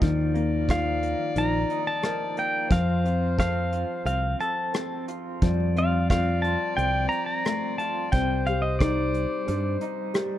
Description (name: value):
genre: acoustic folk-pop ballad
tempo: 89 BPM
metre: 4/4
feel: straight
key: unclear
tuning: A4 = 439 Hz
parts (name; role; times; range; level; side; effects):
- bright clarinet; second line; 0.0-10.4 s; C5 to D5; -33 LUFS; left 4 dB; none
- warm upright piano; accompaniment; 0.0-10.4 s; C3 to C5; -30 LUFS; left 3 dB; none
- electric guitar through a small old amp; arpeggios; 0.0-10.4 s; F3 to A4; -34 LUFS; right 2 dB; tremolo
- fingered electric bass; bass; 0.0-9.8 s; Bb1 to G2; -26 LUFS; equal; none
- soft brush drum kit; drums; 0.0-10.3 s; hi-hat, kick drum, rim click; -25 LUFS; equal; none
- pedal steel guitar; melody; 0.7-9.8 s; D5 to Bb5; -28 LUFS; equal; none
room: light reverb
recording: dark, warm production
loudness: -23 LUFS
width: side -12 dB against mid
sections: 0.0-10.4 A section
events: none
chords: 0.0 Ebsus2; 2.7 F; 5.4 Fadd9; 8.1 Cmadd9